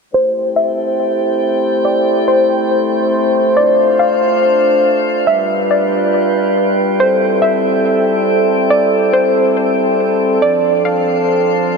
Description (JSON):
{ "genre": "hip hop", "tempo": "140 BPM", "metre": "4/4", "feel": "half-time", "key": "A minor", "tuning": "A4 = 440 Hz", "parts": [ { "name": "soft round pluck", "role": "melody", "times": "0.1-11.8 s", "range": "C5 to F5", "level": "-16 LUFS", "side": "equal", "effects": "chorus, low-pass filter, ping-pong delay" }, { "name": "mellow brass ensemble", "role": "sustained chords", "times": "0.1-11.8 s", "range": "F3 to C5", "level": "-14 LUFS", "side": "equal", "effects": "low-pass filter" }, { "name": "drifting glass-harmonics texture", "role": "texture", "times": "0.6-11.8 s", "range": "C4 to G5", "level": "-22 LUFS", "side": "equal", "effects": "chorus, built-in reverb" } ], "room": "wet huge ambient reverb, RT60 4.1 s", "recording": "dreamy mix soaked in reverb", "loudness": "-11 LUFS", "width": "side -4 dB against mid", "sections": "0.1-11.8 A section", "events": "filter sweep 0.1-11.8", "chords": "0.1 Am7; 3.6 Dm7; 5.3 G7; 7.0 Am7; 10.4 Dm7" }